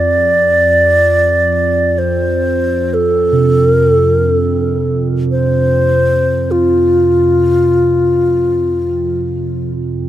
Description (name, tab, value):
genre	world meditative, free-time meditation music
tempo	free time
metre	none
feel	none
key	F major pentatonic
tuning	A4 = 440 Hz
part	mellow hollow alto flute	melody	0.0-9.7 s	F4 to D5	-12 LUFS	left 1 dB	tape echo
part	deep dark ambient pad	drone	0.0-10.1 s	F2	-18 LUFS	right 1 dB	chorus, built-in reverb
part	quartz singing bowl	texture	3.3-10.1 s	C3	-18 LUFS	right 3 dB	none
room	moderate booth ambience, RT60 0.2 s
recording	none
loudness	-11 LUFS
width	side -12 dB against mid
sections	0.0-10.1 A section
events	none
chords	none